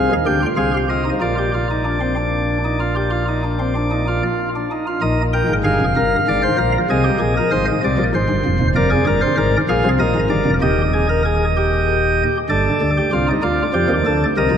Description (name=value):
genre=classical, baroque-style 3-part fugue for pipe organ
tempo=64 BPM (dotted quarters)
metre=12/8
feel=straight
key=Eb major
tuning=A4 = 440 Hz
part: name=chamber organ, sparkling flutes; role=solo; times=0.0-14.6 s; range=Eb1 to G5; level=-15 LUFS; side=equal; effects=none
room=wet church reverb, RT60 3.8 s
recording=none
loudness=-15 LUFS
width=side -8 dB against mid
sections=0.0-5.0 A section; 5.0-12.5 B section; 12.5-14.6 C section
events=none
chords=0.0 Fm; 1.2 Bb; 5.0 Eb; 6.9 Ab; 8.8 Bb7/F; 10.6 Eb; 12.5 G5